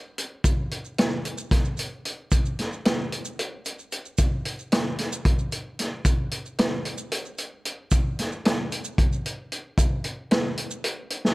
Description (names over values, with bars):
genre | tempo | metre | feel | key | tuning
rock | 225 BPM (eighths) | 7/8 | straight | none | none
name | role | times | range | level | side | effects
vintage drum kit | drums | 0.2-11.3 s | hi-hat, kick drum, snare drum | -23 LUFS | equal | none
maracas | percussion | 0.4-10.8 s | none | -36 LUFS | right 2 dB | none
room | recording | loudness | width
little or no reverb | none | -24 LUFS | side -21 dB against mid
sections
0.0-11.3 A section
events
none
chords
none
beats
0.18 | 0.45 0.71 0.98 1.25 1.51 1.78 2.05 | 2.32 2.58 2.85 3.12 3.39 3.65 3.92 | 4.19 4.46 4.72 4.99 5.26 5.52 5.79 | 6.06 6.32 6.59 6.86 7.12 7.39 7.65 | 7.92 8.19 8.45 8.72 8.98 9.25 9.51 | 9.78 10.04 10.31 10.57 10.84 11.10